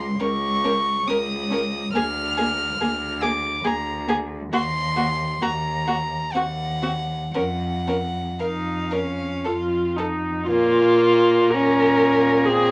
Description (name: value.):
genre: classical, slow romantic movement for string quartet.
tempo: 56-71 BPM.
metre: 3/4.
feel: rubato.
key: Bb minor.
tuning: A4 = 440 Hz.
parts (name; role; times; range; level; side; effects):
rich violin; melody; 0.0-12.7 s; Db5 to F6; -29 LUFS; equal; none.
dark cello; bass; 0.0-12.7 s; Db2 to Bb2; -30 LUFS; equal; none.
dark violin; second line; 0.2-12.7 s; Bb3 to Bb4; -25 LUFS; equal; none.
dark viola; accompaniment; 0.2-12.7 s; Bb3 to Bb4; -24 LUFS; equal; none.
room: light reverb.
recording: none.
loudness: -22 LUFS.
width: mono.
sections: 0.0-10.5 A section; 10.5-12.7 B section.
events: none.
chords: 0.0 N.C.; 1.9 Bb/D; 4.5 Eb5; 6.3 Cdim/Eb (rootless); 7.3 Bbm/F (rootless); 9.4 N.C.; 10.5 Bbm.